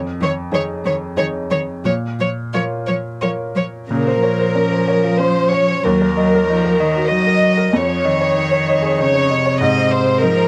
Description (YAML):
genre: neoclassical piano and strings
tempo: 86-97 BPM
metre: 3/4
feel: rubato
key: Bb minor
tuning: A4 = 440 Hz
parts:
  - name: felt-muted upright piano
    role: accompaniment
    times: 0.0-10.5 s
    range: Eb2 to Eb5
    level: -22 LUFS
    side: equal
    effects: none
  - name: warm chamber violin section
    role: melody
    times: 0.2-10.5 s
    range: Bb4 to Eb5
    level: -20 LUFS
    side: equal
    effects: none
  - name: warm cello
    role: second line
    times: 0.2-10.5 s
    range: C3 to Gb3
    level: -22 LUFS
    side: equal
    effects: none
room: moderate booth ambience, RT60 0.2 s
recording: dark, warm production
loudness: -17 LUFS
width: mono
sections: 0.0-3.9 A section; 3.9-10.5 B section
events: none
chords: 0.0 Dbadd9/F; 1.9 Bbm; 3.9 Bbmadd9; 5.8 Ebm; 7.7 Dbadd9/F; 9.6 Ab